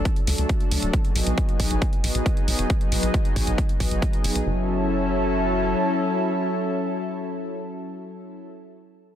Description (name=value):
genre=uplifting trance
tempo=136 BPM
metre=4/4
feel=straight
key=F# minor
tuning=A4 = 437 Hz
part: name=electronic hi-hat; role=drums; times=0.1-4.4 s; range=none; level=-30 LUFS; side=right 1 dB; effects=overdrive, sidechain pumping on hats
part: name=electronic kick drum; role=drums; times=0.1-4.1 s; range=none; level=-22 LUFS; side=equal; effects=overdrive
part: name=lush unison pad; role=sustained chords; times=0.3-8.5 s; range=F#3 to A4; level=-25 LUFS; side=left 1 dB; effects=chorus, sidechain pumping
part: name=tight sequencer bass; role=bass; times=0.3-5.7 s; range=D1 to D2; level=-26 LUFS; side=equal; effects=tube saturation, sidechain pumping
room=light reverb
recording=dense, heavily limited modern master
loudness=-21 LUFS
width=side -10 dB against mid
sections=0.0-4.5 A section; 4.5-8.0 B section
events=filter sweep on analog synth bass 0.0-4.5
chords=0.0 D; 0.9 B6; 4.5 F#m7